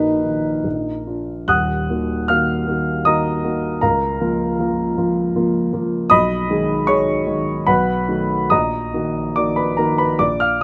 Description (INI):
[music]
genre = classical, romantic duo for French horn and grand piano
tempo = 77 BPM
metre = 3/4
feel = uneven beats, rubato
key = Eb minor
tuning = A4 = 439 Hz
[part]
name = mellow French horn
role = melody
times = 0.0-1.1 s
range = Eb4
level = -22 LUFS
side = equal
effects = none
[part]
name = warm baby grand piano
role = accompaniment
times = 0.0-10.6 s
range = Eb1 to Gb6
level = -19 LUFS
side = equal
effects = none
[sound]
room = light reverb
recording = close, detailed microphones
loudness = -19 LUFS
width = mono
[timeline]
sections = 0.0-1.5 A section; 1.5-10.6 B section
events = none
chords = 0.0 Ebm/Bb; 0.7 Bb; 1.5 Ebm; 3.8 Bbm/Db; 6.1 Abm/Cb; 7.7 B7; 8.5 Ebm/Bb